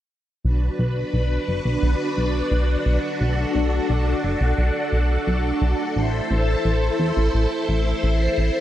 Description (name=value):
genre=synthwave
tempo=87 BPM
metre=4/4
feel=straight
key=B phrygian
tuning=A4 = 441 Hz
part: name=string machine, full ensemble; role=sustained chords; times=0.4-8.6 s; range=D4 to C5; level=-23 LUFS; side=equal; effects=phaser, ensemble chorus
part: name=chorused synth bass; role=bass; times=0.4-8.5 s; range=F#1 to E2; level=-20 LUFS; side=equal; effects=none
room=moderate plate reverb, RT60 3.0 s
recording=bright 1980s-style digital production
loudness=-19 LUFS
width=side -12 dB against mid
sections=0.4-8.6 A section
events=none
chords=0.4 Bm; 6.0 Am